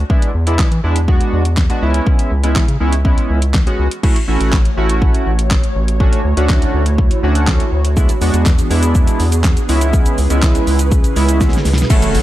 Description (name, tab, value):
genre	dance-pop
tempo	122 BPM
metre	4/4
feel	straight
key	unclear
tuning	A4 = 438 Hz
part	round analog bass	bass	0.0-12.2 s	A1 to E3	-15 LUFS	equal	sidechain pumping
part	chorused polysynth	accompaniment	0.1-12.2 s	G#3 to A4	-19 LUFS	right 1 dB	sidechain pumping
part	pop drum kit	drums	0.1-12.2 s	crash cymbal, handclaps, hi-hat, kick drum, shaker, snare drum	-14 LUFS	equal	none
part	airy breathy pad	sustained chords	4.0-12.2 s	C#3 to C#5	-23 LUFS	right 2 dB	chorus, sidechain pumping
part	impact	sound effects	11.9-12.2 s	none	-18 LUFS	equal	none
room	digital ambience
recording	dry, gritty hardware recording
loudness	-12 LUFS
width	side -14 dB against mid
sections	0.0-4.0 A section; 4.0-11.9 B section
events	drum fill 11.4-11.9; impact 11.9-12.2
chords	0.1 E7; 1.8 C#m7; 4.0 A6; 6.0 Dmaj7; 8.0 E7; 9.7 C#m7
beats	| 0.10 0.59 1.08 1.57 | 2.07 2.56 3.05 3.54 | 4.03 4.53 5.02 5.51 | 6.00 6.49 6.98 7.48 | 7.97 8.46 8.95 9.44 | 9.94 10.43 10.92 11.41 | 11.90